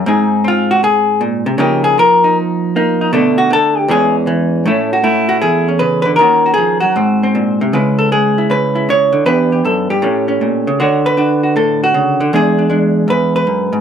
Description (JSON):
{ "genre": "solo jazz", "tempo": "156 BPM", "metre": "4/4", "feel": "swing 66% on 8ths", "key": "A major", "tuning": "A4 = 444 Hz", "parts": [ { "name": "vintage hollow-body jazz guitar", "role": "solo", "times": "0.0-13.8 s", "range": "E2 to C#5", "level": "-11 LUFS", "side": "equal", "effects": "none" } ], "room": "moderate club reverb, RT60 0.9 s", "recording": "close, detailed microphones", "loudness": "-11 LUFS", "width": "side -8 dB against mid", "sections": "0.0-4.6 A section; 4.6-13.8 B section", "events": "hollow-body jazz guitar solo 0.0-4.6", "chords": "0.1 G#add9; 1.6 C#69; 3.1 Bm7; 3.9 E6; 4.6 Amaj7; 6.2 D#m9; 7.0 G#7; 7.7 C#m7; 9.3 Em7; 10.0 A7b9; 10.8 Dmaj7; 12.3 E7", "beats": "| 0.05 0.44 0.82 1.20 | 1.59 1.97 2.35 2.73 | 3.12 3.50 3.88 4.27 | 4.65 5.03 5.42 5.80 | 6.18 6.57 6.95 7.33 | 7.72 8.10 8.49 8.87 | 9.25 9.64 10.02 10.40 | 10.79 11.17 11.55 11.94 | 12.32 12.71 13.09 13.47" }